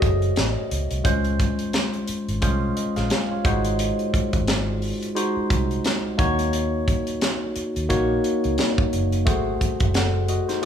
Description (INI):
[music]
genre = lush 1970s-style soul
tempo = 88 BPM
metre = 4/4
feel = swing 58% on 16ths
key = unclear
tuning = A4 = 440 Hz
[part]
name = barky tine electric piano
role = accompaniment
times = 0.0-10.7 s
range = Ab3 to Gb5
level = -24 LUFS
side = left 1 dB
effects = overdrive, phaser
[part]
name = vintage muted fingered electric bass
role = bass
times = 0.0-10.4 s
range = Gb1 to Eb2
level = -26 LUFS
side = right 1 dB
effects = none
[part]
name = tight funk drum kit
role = drums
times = 0.0-10.7 s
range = hi-hat, kick drum, snare drum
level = -24 LUFS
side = equal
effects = none
[sound]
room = moderate large studio reverb, RT60 1.4 s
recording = band playing live in one room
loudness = -20 LUFS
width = side -8 dB against mid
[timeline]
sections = 0.0-10.7 A section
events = none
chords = 0.0 Ab7b9; 1.0 Dbmaj7; 3.4 Ab7; 6.2 Ebm7; 9.3 Ab7b9